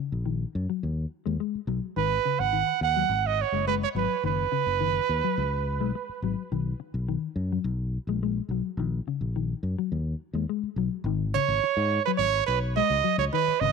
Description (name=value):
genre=afrobeat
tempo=106 BPM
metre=4/4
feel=straight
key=G# minor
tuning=A4 = 442 Hz
part: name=mellow electric guitar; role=arpeggios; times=0.0-13.7 s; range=C#3 to G#3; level=-31 LUFS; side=left 14 dB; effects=none
part: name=fingered electric bass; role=bass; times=0.1-13.7 s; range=F#1 to G#2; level=-29 LUFS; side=left 2 dB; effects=none
part: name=clear trumpet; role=melody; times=2.0-6.2, 11.3-13.7 s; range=B4 to F#5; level=-25 LUFS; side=right 13 dB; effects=tape echo
room=light reverb, small room ambience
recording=1960s-style stereo with parts hard left and right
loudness=-25 LUFS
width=side -5 dB against mid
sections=0.0-11.1 A section; 11.1-13.7 B section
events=none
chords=0.0 Bmaj7 (rootless); 2.0 G#m7; 6.5 Bmaj7; 11.1 G#m7